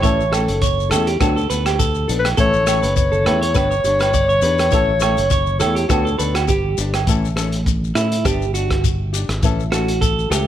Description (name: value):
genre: highlife guitar band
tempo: 102 BPM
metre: 4/4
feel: swing 54% on 16ths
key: A mixolydian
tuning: A4 = 441 Hz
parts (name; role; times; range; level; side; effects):
- breathy clarinet; melody; 0.0-6.4 s; B4 to C#5; -20 LUFS; left 2 dB; analog delay
- nylon-string guitar; accompaniment; 0.0-10.5 s; E3 to A4; -25 LUFS; left 6 dB; none
- clean electric guitar; arpeggios; 0.0-10.5 s; E4 to D5; -22 LUFS; right 4 dB; analog delay
- fingered electric bass; bass; 0.0-10.5 s; F#1 to A2; -21 LUFS; equal; none
- crunchy breakbeat drum kit; drums; 0.0-10.5 s; hi-hat, kick drum, rim click; -22 LUFS; equal; none
- shekere; percussion; 0.0-10.5 s; none; -26 LUFS; left 7 dB; none
- agogo bells; percussion; 0.3-7.1 s; none; -27 LUFS; right 15 dB; none
room: studio reverb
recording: none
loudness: -15 LUFS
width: side -11 dB against mid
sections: 0.0-7.1 A section; 7.1-10.5 B section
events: clean electric guitar solo 7.1-10.5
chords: 0.0 A; 1.2 D6; 2.4 A; 3.6 G; 4.7 A; 5.9 D6; 6.5 G5; 7.1 A; 8.3 G; 9.4 A